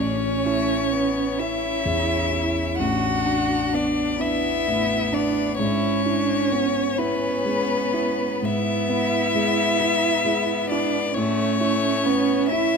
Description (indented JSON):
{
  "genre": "classical, slow romantic movement for piano quartet",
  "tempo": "43 BPM (dotted quarters)",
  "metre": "12/8",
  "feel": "rubato",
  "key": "A major",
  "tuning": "A4 = 441 Hz",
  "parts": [
    { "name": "clear violin", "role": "melody", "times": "0.0-12.8 s", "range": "B4 to F#5", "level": "-24 LUFS", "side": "left 7 dB", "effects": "none" },
    { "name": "rich cello", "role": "second line", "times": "0.0-12.8 s", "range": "B3 to F#4", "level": "-26 LUFS", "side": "right 10 dB", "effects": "none" },
    { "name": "rich violin", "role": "second line", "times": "0.0-12.8 s", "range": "A3 to E4", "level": "-29 LUFS", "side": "left 3 dB", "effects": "none" },
    { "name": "warm concert grand piano", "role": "accompaniment", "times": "0.0-12.8 s", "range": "A1 to E4", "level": "-25 LUFS", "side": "equal", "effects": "none" }
  ],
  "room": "moderate concert hall reverb, RT60 2.2 s",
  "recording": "none",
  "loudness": "-20 LUFS",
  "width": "side -5 dB against mid",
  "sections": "0.0-12.8 A section",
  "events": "none",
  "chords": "0.0 A; 2.8 Bm7/A; 5.6 E7/G#; 11.2 A"
}